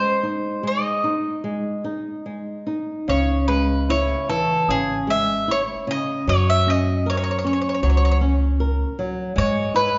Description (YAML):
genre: fado-style ballad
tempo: 73-79 BPM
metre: 4/4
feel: rubato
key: C# minor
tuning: A4 = 439 Hz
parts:
  - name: bowl-back mandolin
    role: melody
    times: 0.0-10.0 s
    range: G#4 to E5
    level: -24 LUFS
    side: equal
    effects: none
  - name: flamenco guitar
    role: accompaniment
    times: 0.0-10.0 s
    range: C#3 to A#4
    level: -27 LUFS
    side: equal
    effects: none
  - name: upright bass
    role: bass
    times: 3.1-10.0 s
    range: G#1 to G#2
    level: -24 LUFS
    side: equal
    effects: none
room: wet recital hall reverb, RT60 1.6 s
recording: recorded in a church or concert hall, nothing above 7.5 kHz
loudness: -21 LUFS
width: mono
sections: 0.0-10.0 A section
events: none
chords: 0.0 G#; 3.1 C#m; 6.3 F#; 9.4 G#madd11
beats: 0.63 1.44 2.26 | 3.08 3.88 4.68 5.47 | 6.27 7.05 7.83 8.60 | 9.36